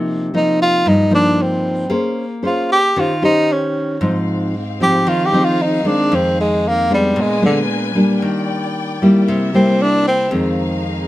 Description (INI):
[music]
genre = bossa nova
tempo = 114 BPM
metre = 4/4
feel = straight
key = Eb major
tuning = A4 = 440 Hz
[part]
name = nylon-string guitar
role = accompaniment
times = 0.0-11.1 s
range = F2 to C5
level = -16 LUFS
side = equal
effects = none
[part]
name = breathy tenor saxophone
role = melody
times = 0.4-10.3 s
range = D3 to G4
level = -15 LUFS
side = equal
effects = none
[part]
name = warm symphonic string section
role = sustained chords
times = 4.0-11.1 s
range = C4 to Ab5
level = -27 LUFS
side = left 3 dB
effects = none
[sound]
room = light reverb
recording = none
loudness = -14 LUFS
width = side -16 dB against mid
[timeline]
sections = 0.0-11.1 A section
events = tenor saxophone solo 0.0-11.1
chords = 0.0 Cm7; 1.9 Bbm9; 3.0 Eb6; 4.0 Ab6; 6.1 Fm7; 7.2 Bb7b9; 8.2 Ebmaj7; 9.3 C7; 10.3 Fm7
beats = 0.32 0.85 1.37 | 1.90 2.43 2.95 3.48 | 4.01 4.53 5.06 5.58 | 6.11 6.64 7.16 7.69 | 8.22 8.74 9.27 9.79 | 10.32 10.85